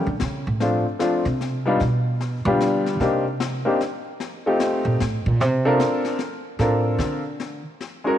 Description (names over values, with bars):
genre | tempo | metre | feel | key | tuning
jazz piano trio | 150 BPM | 3/4 | swing 64% on 8ths | Bb major | A4 = 440 Hz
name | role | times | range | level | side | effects
clear upright piano | melody | 0.0-8.2 s | F3 to Bb4 | -22 LUFS | left 1 dB | none
upright bass | bass | 0.0-7.6 s | A2 to D3 | -23 LUFS | right 1 dB | none
snare drum and brushed snare drum | drums | 0.2-8.2 s | none | -32 LUFS | left 6 dB | none
room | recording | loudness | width
light reverb, small room ambience | 1960s-style stereo | -20 LUFS | side -11 dB against mid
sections
0.0-7.8 A section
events
upright bass solo 0.0-8.2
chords
0.0 A; 0.6 Dm7; 1.8 G7; 3.0 Cm7; 4.2 F9; 5.4 Bbmaj9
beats
0.20 | 0.60 1.00 1.40 | 1.80 2.20 2.60 | 3.00 3.40 3.80 | 4.20 4.60 5.00 | 5.40 5.80 6.20 | 6.60 7.00 7.40 | 7.80